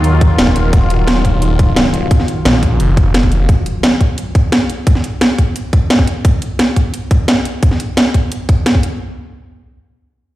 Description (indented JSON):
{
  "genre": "dark technical drum and bass",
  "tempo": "174 BPM",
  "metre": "4/4",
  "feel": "straight",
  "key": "Eb minor",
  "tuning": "A4 = 444 Hz",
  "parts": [
    { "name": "sweeping resonant pad", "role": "sustained chords", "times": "0.0-3.4 s", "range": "Eb3 to F4", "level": "-20 LUFS", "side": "left 1 dB", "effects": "chorus, sidechain pumping" },
    { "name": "snarling distorted saw bass", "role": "bass", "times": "0.0-3.5 s", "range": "Eb1 to Eb2", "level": "-14 LUFS", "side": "equal", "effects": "distortion, sidechain pumping" },
    { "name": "drum and bass drum kit", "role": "drums", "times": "0.0-8.9 s", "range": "hi-hat, snare drum", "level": "-15 LUFS", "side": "equal", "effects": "overdrive, small room reverb" },
    { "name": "warbly tape-like pad", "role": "texture", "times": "0.0-0.7 s", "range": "Eb4 to Bb4", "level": "-29 LUFS", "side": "right 2 dB", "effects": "none" },
    { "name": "electronic kick drum", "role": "drums", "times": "0.2-8.8 s", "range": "none", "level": "-11 LUFS", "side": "equal", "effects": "overdrive, small room reverb" }
  ],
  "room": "light reverb, digital ambience",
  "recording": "played on a big sound system in a bare room, large studio reverb",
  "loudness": "-11 LUFS",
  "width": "side -16 dB against mid",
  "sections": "0.0-9.0 A section; 9.0-10.4 B section",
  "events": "none",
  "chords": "0.0 Ebmadd9; 9.0 N.C."
}